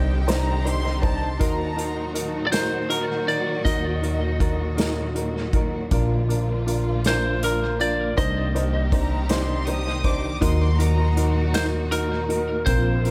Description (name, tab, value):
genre	six-eight pop ballad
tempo	53 BPM (dotted quarters)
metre	6/8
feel	straight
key	unclear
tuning	A4 = 439 Hz
part	lightly driven lead guitar	melody	0.0-13.1 s	Bb4 to Eb5	-30 LUFS	equal	tape echo
part	warm studio violin section	second line	0.0-2.3, 8.9-11.4 s	G5 to Eb6	-34 LUFS	equal	tape echo
part	clear upright piano	accompaniment	0.0-13.1 s	C4 to C5	-30 LUFS	equal	tape echo
part	warm studio string section	sustained chords	0.0-13.1 s	Bb2 to G4	-33 LUFS	equal	none
part	upright bass	bass	0.0-13.1 s	Bb1 to Eb2	-27 LUFS	equal	none
part	unplugged drum kit	drums	0.3-13.1 s	hi-hat, kick drum, snare drum	-29 LUFS	equal	tape echo
room	light reverb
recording	echo-heavy mix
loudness	-23 LUFS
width	mono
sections	0.0-13.1 A section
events	none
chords	0.0 Cmadd9; 1.4 Ebm; 5.9 Bb; 8.2 Cmadd9; 10.4 Ebm